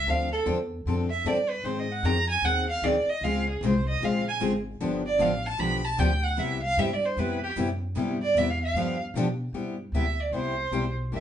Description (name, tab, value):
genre	acoustic string swing (jazz manouche)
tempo	152 BPM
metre	4/4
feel	swing 62% on 8ths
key	C major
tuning	A4 = 441 Hz
part	clear violin	melody	0.0-11.2 s	G4 to B5	-27 LUFS	right 2 dB	none
part	upright bass	bass	0.0-11.2 s	G1 to B2	-31 LUFS	equal	none
part	picked steel-string acoustic guitar	accompaniment	0.1-11.2 s	C3 to A4	-29 LUFS	left 4 dB	none
part	picked steel-string acoustic guitar	accompaniment	3.2-9.3 s	C3 to Ab4	-34 LUFS	right 5 dB	none
room	wet studio reverb, RT60 0.6 s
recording	band playing live in one room, nothing above 10.4 kHz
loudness	-24 LUFS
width	side -10 dB against mid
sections	0.0-9.5 A section; 9.5-11.2 B section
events	violin solo 0.0-9.5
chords	0.1 Dm9; 1.6 Ab7; 3.2 Dbmaj7; 4.8 G7; 6.4 Cmaj7; 8.7 G7; 9.5 Cmaj7